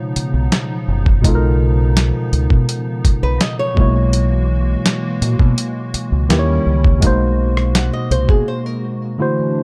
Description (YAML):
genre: contemporary R&B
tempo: 83 BPM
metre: 4/4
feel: straight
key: unclear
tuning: A4 = 440 Hz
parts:
  - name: tine electric piano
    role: accompaniment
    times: 0.0-9.6 s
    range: B2 to C#5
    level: -22 LUFS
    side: equal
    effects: none
  - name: hollow soft pad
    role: sustained chords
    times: 0.0-9.6 s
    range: C#3 to F#4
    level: -28 LUFS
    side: equal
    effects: ensemble chorus
  - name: deep dub fingered electric bass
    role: bass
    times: 0.2-8.4 s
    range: F#1 to B2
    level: -19 LUFS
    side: equal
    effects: none
  - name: dusty soul sampler-style drum kit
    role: drums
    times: 0.2-8.5 s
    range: hi-hat, kick drum, rim click, snare drum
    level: -17 LUFS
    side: equal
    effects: none
  - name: flamenco guitar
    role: arpeggios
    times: 3.2-9.2 s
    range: G#4 to F#5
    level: -25 LUFS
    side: equal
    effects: tape echo
room: little or no reverb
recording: dark, warm production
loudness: -16 LUFS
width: mono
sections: 0.0-9.6 A section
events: break 8.5-9.6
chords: 0.0 C#9; 3.8 F#9/B; 6.3 D#7b9; 7.0 G#9/B